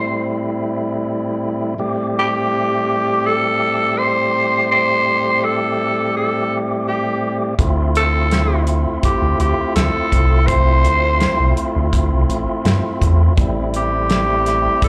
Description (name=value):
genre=straight-eighth soul blues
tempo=83 BPM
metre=4/4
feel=straight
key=A minor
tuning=A4 = 441 Hz
part: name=growling tenor saxophone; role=melody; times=0.0-14.9 s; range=G4 to C5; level=-20 LUFS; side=equal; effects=slapback echo
part: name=tonewheel organ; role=accompaniment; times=0.0-14.9 s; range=A2 to G4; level=-23 LUFS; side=equal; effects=overdrive, fast rotary speaker, slapback echo
part: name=round analog bass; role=bass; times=7.6-14.6 s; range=A1 to G2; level=-19 LUFS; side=equal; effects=none
part: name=warm soul drum kit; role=drums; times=7.6-14.9 s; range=hi-hat, kick drum, snare drum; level=-22 LUFS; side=equal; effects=none
room=small room ambience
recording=live gig heard through the venue's PA, club ambience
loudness=-17 LUFS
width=mono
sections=0.0-14.9 A section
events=none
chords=0.0 Am7; 7.6 Dm7; 13.4 Am7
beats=0.34 1.06 | 1.79 2.51 3.24 3.96 | 4.69 5.41 6.13 6.86 | 7.58 8.31 9.03 9.75 | 10.48 11.20 11.92 12.65 | 13.37 14.09 14.81